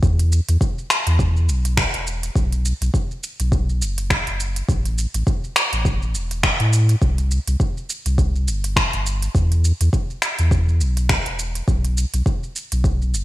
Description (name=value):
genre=organic downtempo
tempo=103 BPM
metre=4/4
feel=swing 57% on 16ths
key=E minor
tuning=A4 = 440 Hz
part: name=warm sub bass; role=bass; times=0.0-13.2 s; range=E1 to A2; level=-19 LUFS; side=equal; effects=none
part: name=electronic kick drum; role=drums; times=0.0-13.0 s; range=none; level=-20 LUFS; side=equal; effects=studio reverb
part: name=organic electronic drum kit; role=drums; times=0.0-13.2 s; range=finger snaps, hi-hat, shaker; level=-23 LUFS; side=equal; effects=overdrive, studio reverb, gated reverb
room=digital ambience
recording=bright 1980s-style digital production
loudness=-18 LUFS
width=side -16 dB against mid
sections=0.0-13.2 A section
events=none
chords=none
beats=| 0.03 0.61 1.19 1.77 | 2.36 2.94 3.52 4.10 | 4.69 5.27 5.85 6.43 | 7.02 7.60 8.18 8.76 | 9.35 9.93 10.51 11.09 | 11.68 12.26 12.84